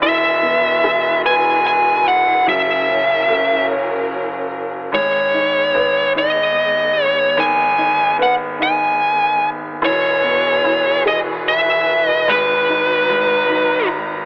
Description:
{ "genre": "pop", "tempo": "49 BPM (dotted quarters)", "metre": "6/8", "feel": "straight", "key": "G# minor", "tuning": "A4 = 440 Hz", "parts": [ { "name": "fuzz lead guitar", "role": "melody", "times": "0.0-13.9 s", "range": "B4 to G#5", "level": "-17 LUFS", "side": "equal", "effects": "distortion" }, { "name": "warm upright piano", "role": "accompaniment", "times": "0.0-14.3 s", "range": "D#3 to C#5", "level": "-28 LUFS", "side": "equal", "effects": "none" }, { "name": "warm studio string section", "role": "sustained chords", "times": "0.0-14.3 s", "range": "E3 to A#5", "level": "-27 LUFS", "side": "equal", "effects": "none" }, { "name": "clear grand piano", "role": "bass", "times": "0.0-14.3 s", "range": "E1 to G#1", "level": "-25 LUFS", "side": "equal", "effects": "none" } ], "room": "light reverb, small room ambience", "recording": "telephone sound", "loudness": "-16 LUFS", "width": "mono", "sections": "0.0-14.3 A section", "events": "none", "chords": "0.0 Eadd9; 2.5 F#7; 4.9 G#m; 9.8 Eadd9; 12.3 G#m7", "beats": "| 0.02 1.25 | 2.47 3.70 | 4.92 6.15 | 7.37 8.60 | 9.82 11.05 | 12.27 13.50" }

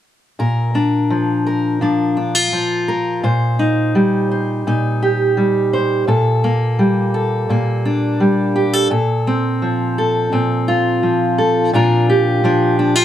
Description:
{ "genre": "folk", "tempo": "85 BPM", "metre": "4/4", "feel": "straight", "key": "Bb major", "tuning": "A4 = 439 Hz", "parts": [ { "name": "fingerpicked steel-string acoustic guitar", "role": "accompaniment", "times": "0.4-13.0 s", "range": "Bb2 to C5", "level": "-14 LUFS", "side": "equal", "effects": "none" } ], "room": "moderate booth ambience, RT60 0.2 s", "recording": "none", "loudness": "-14 LUFS", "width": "side -11 dB against mid", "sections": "0.4-11.7 A section; 11.7-13.0 B section", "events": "none", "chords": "0.4 Bb; 3.2 Cm/Bb; 6.1 Gmadd9/Bb; 8.9 F/Bb; 11.7 Bb", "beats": "| 0.39 1.10 1.81 2.52 | 3.23 3.94 4.66 5.37 | 6.08 6.79 7.49 8.20 | 8.91 9.62 10.32 11.03 | 11.74 12.44" }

